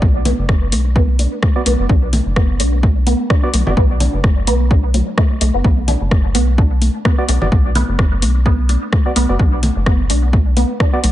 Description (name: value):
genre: minimal techno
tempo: 128 BPM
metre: 4/4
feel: swing 56% on 16ths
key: B minor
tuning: A4 = 440 Hz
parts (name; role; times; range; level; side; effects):
- rubbery square bass; bass; 0.0-11.1 s; F#1 to B1; -16 LUFS; equal; sidechain pumping
- electronic kick drum; drums; 0.0-10.9 s; none; -14 LUFS; equal; overdrive
- electronic toms and congas; percussion; 0.0-11.1 s; none; -24 LUFS; equal; dub echo
- resonant blip pluck; riff; 0.3-10.9 s; F#3 to D4; -23 LUFS; right 1 dB; phaser, ensemble chorus, sidechain pumping, dub echo
- punchy analog drum machine; drums; 0.3-11.1 s; hi-hat, rim click; -24 LUFS; left 1 dB; overdrive, dub echo
- percussive organ stab; stabs; 1.6-3.7, 7.2-11.0 s; B3 to D5; -24 LUFS; right 2 dB; chorus, cassette tape, dub echo
room: light reverb, digital ambience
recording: echo-heavy mix, nothing above 10.7 kHz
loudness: -12 LUFS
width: side -14 dB against mid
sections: 0.0-11.1 A section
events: none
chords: 0.0 Bm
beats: | 0.02 0.49 0.96 1.43 | 1.90 2.36 2.83 3.30 | 3.77 4.24 4.71 5.18 | 5.64 6.11 6.58 7.05 | 7.52 7.99 8.46 8.93 | 9.39 9.86 10.33 10.80